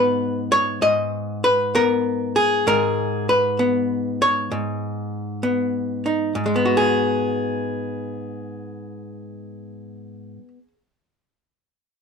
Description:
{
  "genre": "solo jazz",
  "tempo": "65 BPM",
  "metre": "4/4",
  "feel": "swing 66% on 8ths",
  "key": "G# minor",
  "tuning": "A4 = 441 Hz",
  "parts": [
    { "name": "archtop guitar, miked and amplified", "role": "solo", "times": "0.0-10.8 s", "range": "G#2 to D#5", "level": "-20 LUFS", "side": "left 1 dB", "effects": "none" }
  ],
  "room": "light reverb",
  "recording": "close, detailed microphones",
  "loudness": "-19 LUFS",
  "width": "side -6 dB against mid",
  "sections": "0.0-6.4 A section; 6.4-10.0 B section",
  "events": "none",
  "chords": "0.0 G#m9; 6.4 G#m7"
}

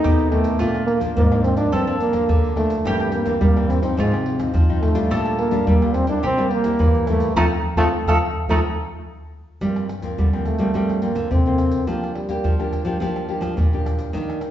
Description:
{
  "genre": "samba and choro",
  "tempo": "106 BPM",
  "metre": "4/4",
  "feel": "straight",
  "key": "G minor from 9.6 s",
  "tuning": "A4 = 440 Hz",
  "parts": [
    { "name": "breathy trombone", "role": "melody", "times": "0.0-12.7 s", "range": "G3 to Eb4", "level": "-22 LUFS", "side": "right 1 dB", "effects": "none" },
    { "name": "bowl-back mandolin", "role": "second line", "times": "0.0-8.6 s", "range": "Eb4 to A4", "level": "-27 LUFS", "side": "right 1 dB", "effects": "none" },
    { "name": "nylon-string guitar", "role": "accompaniment", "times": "0.0-14.5 s", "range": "F2 to G4", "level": "-26 LUFS", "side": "left 2 dB", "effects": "none" },
    { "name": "nylon-string guitar", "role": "bass", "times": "0.0-14.4 s", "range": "G2 to G3", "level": "-24 LUFS", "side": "equal", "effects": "none" },
    { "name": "egg shaker, surdo, pandeiro and tamborim", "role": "percussion", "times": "0.0-14.5 s", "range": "none", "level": "-22 LUFS", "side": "equal", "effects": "none" }
  ],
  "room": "wet recital hall reverb, RT60 1.5 s",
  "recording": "recorded in a church or concert hall, nothing above 7.6 kHz",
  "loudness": "-17 LUFS",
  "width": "side -11 dB against mid",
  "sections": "0.0-9.6 A section; 9.6-14.5 B section",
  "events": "band accent 7.4-9.6; trombone solo 9.6-14.5",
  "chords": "0.0 F7 (rootless); 0.6 Bb; 1.7 Gm7; 2.9 C7/G; 4.0 Fm7/Ab; 5.1 Bb6; 6.2 C7; 7.4 F; 9.6 Gm11; 11.9 Bb6/F"
}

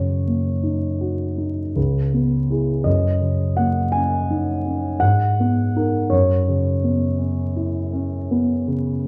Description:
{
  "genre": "classical, impressionist solo piano",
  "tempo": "54 BPM (dotted quarters)",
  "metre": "9/8",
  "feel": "rubato",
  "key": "unclear",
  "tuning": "A4 = 437 Hz",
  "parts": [
    { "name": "warm grand piano", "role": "solo", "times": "0.0-9.1 s", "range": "C#2 to G#5", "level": "-21 LUFS", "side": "equal", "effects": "none" }
  ],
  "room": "moderate recital hall reverb, RT60 1.5 s",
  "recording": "vinyl crackle",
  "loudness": "-21 LUFS",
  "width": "mono",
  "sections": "0.0-9.1 A section",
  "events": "none",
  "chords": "0.0 F#6; 1.8 C#m7; 2.9 F#69; 5.0 G#m9; 6.1 F#7sus4"
}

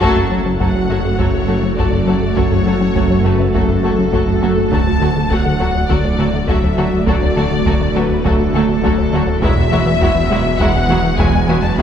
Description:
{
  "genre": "cinematic, hybrid orchestral and electronic film score",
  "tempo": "102 BPM",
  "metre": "4/4",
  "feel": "straight",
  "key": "F# minor",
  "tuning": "A4 = 441 Hz",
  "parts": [
    { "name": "warm symphonic violin section", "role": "melody", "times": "0.0-11.8 s", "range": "A4 to B5", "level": "-22 LUFS", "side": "left 4 dB", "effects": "none" },
    { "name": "warm symphonic violin section", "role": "second line", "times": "0.0-11.8 s", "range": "E4 to A4", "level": "-25 LUFS", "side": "left 2 dB", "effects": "none" },
    { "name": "rich symphonic viola section", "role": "accompaniment", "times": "0.0-11.8 s", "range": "F#3 to A3", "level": "-22 LUFS", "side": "right 2 dB", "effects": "none" },
    { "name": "dark French horn section", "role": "sustained chords", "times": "0.0-11.8 s", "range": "G#3 to F#4", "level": "-24 LUFS", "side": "left 2 dB", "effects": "none" },
    { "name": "ethereal airy pad", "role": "sustained chords", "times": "0.6-11.8 s", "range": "F#3 to D5", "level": "-22 LUFS", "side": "right 3 dB", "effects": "ensemble chorus, built-in reverb" },
    { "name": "resonant blip pluck", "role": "arpeggios", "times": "0.0-11.8 s", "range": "D3 to C#4", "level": "-25 LUFS", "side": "equal", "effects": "none" },
    { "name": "round analog bass", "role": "riff", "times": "0.0-11.8 s", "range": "D2 to F#3", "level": "-20 LUFS", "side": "left 2 dB", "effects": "none" },
    { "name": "rich symphonic double bass section", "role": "bass", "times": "0.0-11.8 s", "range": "E1 to D2", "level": "-23 LUFS", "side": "right 2 dB", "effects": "none" },
    { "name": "swelling detuned saw bass", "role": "bass", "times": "0.0-11.8 s", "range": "D1 to F#1", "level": "-25 LUFS", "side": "equal", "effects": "none" },
    { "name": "warm symphonic cello section", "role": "bass", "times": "0.0-11.8 s", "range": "D2 to F#2", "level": "-23 LUFS", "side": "right 2 dB", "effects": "none" },
    { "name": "solo taiko drums", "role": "drums", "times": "0.0-11.8 s", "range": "none", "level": "-22 LUFS", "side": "equal", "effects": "none" }
  ],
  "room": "wet concert hall reverb, RT60 2.4 s",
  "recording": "heard from further back in the room",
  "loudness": "-13 LUFS",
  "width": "side -8 dB against mid",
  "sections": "0.0-11.8 A section",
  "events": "band accent 0.0-0.6",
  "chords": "0.0 F#m; 4.7 D; 9.4 Eadd9"
}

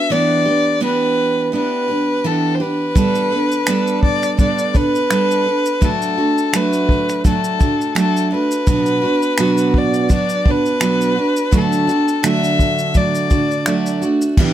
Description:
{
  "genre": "acoustic pop",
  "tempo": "84 BPM",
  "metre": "4/4",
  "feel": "swing 55% on 16ths",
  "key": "unclear",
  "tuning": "A4 = 439 Hz",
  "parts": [
    { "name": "warm violin", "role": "melody", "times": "0.0-14.0 s", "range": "A4 to E5", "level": "-19 LUFS", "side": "left 3 dB", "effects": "none" },
    { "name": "picked steel-string acoustic guitar", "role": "accompaniment", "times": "0.0-14.5 s", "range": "B2 to A4", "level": "-17 LUFS", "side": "right 3 dB", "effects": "none" },
    { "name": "unplugged drum kit", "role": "drums", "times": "3.0-14.5 s", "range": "crash cymbal, finger snaps, kick drum, shaker", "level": "-17 LUFS", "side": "equal", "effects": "none" }
  ],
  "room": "light reverb",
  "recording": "close, detailed microphones",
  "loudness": "-14 LUFS",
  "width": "side -11 dB against mid",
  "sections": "0.0-14.4 A section",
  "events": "none",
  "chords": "0.1 Em7; 3.0 Gadd9; 5.8 D/F#; 8.7 Bm; 11.5 D"
}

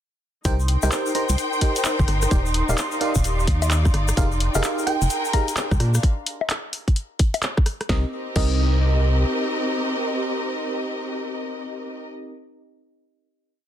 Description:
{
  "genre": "UK garage, two-step garage",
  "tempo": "129 BPM",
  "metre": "4/4",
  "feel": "swing 63% on 16ths",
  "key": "C minor",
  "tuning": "A4 = 440 Hz",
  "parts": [
    { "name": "warm analog pad", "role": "sustained chords", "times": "0.5-6.0 s", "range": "C6", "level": "-32 LUFS", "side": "right 5 dB", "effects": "chorus, sidechain pumping" },
    { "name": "FM electric piano", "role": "stabs", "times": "0.5-12.3 s", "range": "C4 to Bb5", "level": "-28 LUFS", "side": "right 1 dB", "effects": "chorus, tremolo, ping-pong delay" },
    { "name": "organ-like FM bass", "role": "bass", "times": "0.5-9.2 s", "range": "Eb1 to Bb2", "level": "-20 LUFS", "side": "equal", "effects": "sidechain pumping" },
    { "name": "electronic kick drum", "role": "drums", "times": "0.5-8.5 s", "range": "none", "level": "-20 LUFS", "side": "equal", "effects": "none" },
    { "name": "punchy analog drum machine", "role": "drums", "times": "0.5-8.5 s", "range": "bongos, crash cymbal, handclaps, hi-hat, rim click, snare drum", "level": "-27 LUFS", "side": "left 2 dB", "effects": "none" },
    { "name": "egg shaker", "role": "percussion", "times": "0.5-6.0 s", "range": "none", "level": "-32 LUFS", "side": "left 6 dB", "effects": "none" },
    { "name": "warm symphonic string section", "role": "texture", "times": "0.5-12.1 s", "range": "C4 to G5", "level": "-28 LUFS", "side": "equal", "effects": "sidechain pumping" },
    { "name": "thumb-piano-like synth pluck", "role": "melody", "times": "4.9-5.5 s", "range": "G5 to Bb5", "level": "-29 LUFS", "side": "right 2 dB", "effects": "chorus, ping-pong delay" }
  ],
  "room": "light reverb, digital ambience",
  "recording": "dense, heavily limited modern master",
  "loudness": "-20 LUFS",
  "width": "side -11 dB against mid",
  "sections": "0.5-7.9 drop; 7.9-11.6 final chord",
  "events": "drop 0.5-7.9",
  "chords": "0.5 Cm7; 2.3 Ebmaj9; 4.2 Fm11; 5.8 Bb7; 7.9 Cm7"
}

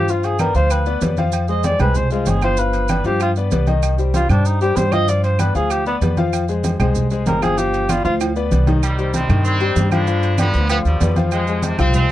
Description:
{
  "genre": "latin, salsa",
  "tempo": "192 BPM",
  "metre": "4/4",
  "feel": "straight",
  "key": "unclear",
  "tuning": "A4 = 436 Hz",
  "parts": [
    { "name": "mellow cor anglais", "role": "melody", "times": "0.0-8.1 s", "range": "B3 to Eb5", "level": "-20 LUFS", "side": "right 1 dB", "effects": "none" },
    { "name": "clear baby grand piano", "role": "accompaniment", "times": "0.0-12.0 s", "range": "Eb3 to F5", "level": "-22 LUFS", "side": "left 6 dB", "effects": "none" },
    { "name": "upright bass", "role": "bass", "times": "0.0-12.1 s", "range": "G1 to G2", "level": "-18 LUFS", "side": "equal", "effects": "none" },
    { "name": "congas", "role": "percussion", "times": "0.1-12.1 s", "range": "none", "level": "-23 LUFS", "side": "equal", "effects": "none" },
    { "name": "maracas", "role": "percussion", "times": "0.1-12.1 s", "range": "none", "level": "-35 LUFS", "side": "right 19 dB", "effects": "none" },
    { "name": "agogo bells and timbales", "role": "percussion", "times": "0.2-11.9 s", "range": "none", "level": "-28 LUFS", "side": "right 6 dB", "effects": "none" },
    { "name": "claves", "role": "percussion", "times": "0.4-11.9 s", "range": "none", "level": "-32 LUFS", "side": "right 19 dB", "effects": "none" },
    { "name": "brilliant horn section", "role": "melody", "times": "8.8-12.1 s", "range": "B2 to D4", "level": "-22 LUFS", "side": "right 1 dB", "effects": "none" }
  ],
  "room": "little or no reverb",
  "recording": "dry, close 1970s-style studio recording",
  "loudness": "-15 LUFS",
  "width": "side -14 dB against mid",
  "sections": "0.0-8.8 A section; 8.8-12.1 B section",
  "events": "cor anglais solo 0.0-8.8; drum fill 8.2-8.8",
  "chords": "0.1 G7; 1.3 Fm; 2.6 G7; 3.8 Cm; 5.1 G7; 6.3 Fm; 7.6 G7; 8.8 Cm; 10.1 G7; 11.3 Fm"
}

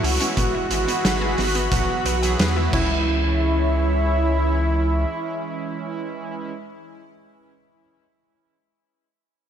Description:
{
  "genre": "synthwave",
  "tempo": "89 BPM",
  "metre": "4/4",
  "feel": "straight",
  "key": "C# minor",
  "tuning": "A4 = 440 Hz",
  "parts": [
    { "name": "soft supersaw", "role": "melody", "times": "0.0-6.5 s", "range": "E4 to F#4", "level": "-25 LUFS", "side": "right 2 dB", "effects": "ping-pong delay" },
    { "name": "FM electric piano with soft pad layer", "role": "second line", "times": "0.0-7.1 s", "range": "E4 to F#4", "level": "-37 LUFS", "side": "left 2 dB", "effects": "none" },
    { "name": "lush unison pad", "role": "sustained chords", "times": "0.0-6.5 s", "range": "G#3 to C#6", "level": "-31 LUFS", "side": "equal", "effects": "chorus, sidechain pumping" },
    { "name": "analog pluck", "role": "arpeggios", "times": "0.0-3.4 s", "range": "B3 to F#5", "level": "-33 LUFS", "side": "left 1 dB", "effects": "chorus, ping-pong delay" },
    { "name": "analog synth brass", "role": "stabs", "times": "0.0-6.5 s", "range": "E3 to G#4", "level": "-30 LUFS", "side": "right 3 dB", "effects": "chorus, ping-pong delay" },
    { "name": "round analog bass", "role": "bass", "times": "0.0-5.0 s", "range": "G#1 to E2", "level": "-22 LUFS", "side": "left 1 dB", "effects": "sidechain pumping" },
    { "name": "oversized low-tuned drum kit", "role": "drums", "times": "0.0-2.9 s", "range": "crash cymbal, hi-hat, snare drum", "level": "-25 LUFS", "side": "right 1 dB", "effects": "none" },
    { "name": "kick drum", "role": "drums", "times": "0.4-2.9 s", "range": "none", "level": "-28 LUFS", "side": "left 1 dB", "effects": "none" }
  ],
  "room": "light reverb, small room ambience",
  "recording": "bright 1980s-style digital production",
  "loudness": "-19 LUFS",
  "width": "side -8 dB against mid",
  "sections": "0.0-3.1 A section; 3.1-5.8 B section",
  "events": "none",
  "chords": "0.4 E/G#; 1.7 Bsus4; 2.7 C#m"
}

